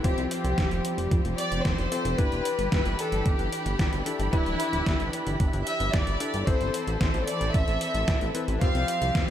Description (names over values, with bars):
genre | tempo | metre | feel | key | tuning
italo disco | 112 BPM | 4/4 | straight | unclear | A4 = 436 Hz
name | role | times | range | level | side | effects
dark studio violin section | melody | 0.0-9.3 s | E4 to F5 | -30 LUFS | equal | ping-pong delay, shimmer reverb
rich studio string section | sustained chords | 0.0-9.3 s | E3 to B5 | -34 LUFS | equal | shimmer reverb
clear electric grand piano | stabs | 0.0-9.3 s | C4 to C5 | -34 LUFS | left 5 dB | low-pass filter, shimmer reverb
chorused synth bass | bass | 0.0-9.2 s | D1 to C2 | -30 LUFS | equal | none
detuned 8-bit digital drum machine | drums | 0.0-9.3 s | hi-hat, snare drum | -33 LUFS | equal | overdrive, gated reverb
electronic kick drum | drums | 0.0-9.3 s | none | -26 LUFS | equal | overdrive
room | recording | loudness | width
light reverb | none | -24 LUFS | side -10 dB against mid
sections
0.0-9.3 A section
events
filter sweep on electric grand piano 0.0-9.3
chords
0.0 Fsus2; 2.2 G6; 6.5 Amadd9; 8.6 Fsus2